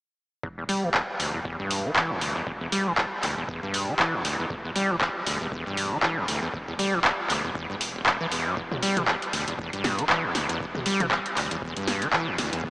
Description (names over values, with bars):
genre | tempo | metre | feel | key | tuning
acid house | 118 BPM | 4/4 | swing 57% on 16ths | E minor | A4 = 440 Hz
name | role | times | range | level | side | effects
acid bass, saw | riff | 0.4-12.7 s | E1 to G3 | -28 LUFS | equal | overdrive, analog chorus, tape echo
warm sub bass | bass | 0.4-12.7 s | E1 | -44 LUFS | equal | none
electronic kick drum | drums | 0.4-12.7 s | none | -39 LUFS | equal | none
electro analog drum machine | drums | 0.7-12.6 s | handclaps, hi-hat, snare drum, toms | -26 LUFS | equal | none
room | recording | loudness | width
wet huge ambient reverb, RT60 3.9 s | dreamy mix soaked in reverb, small speaker sound | -24 LUFS | side -26 dB against mid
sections
0.4-12.7 A section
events
none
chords
0.4 Em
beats
| 0.43 0.94 1.45 1.96 | 2.47 2.98 3.49 3.99 | 4.50 5.01 5.52 6.03 | 6.54 7.04 7.55 8.06 | 8.57 9.08 9.59 10.10 | 10.60 11.11 11.62 12.13 | 12.64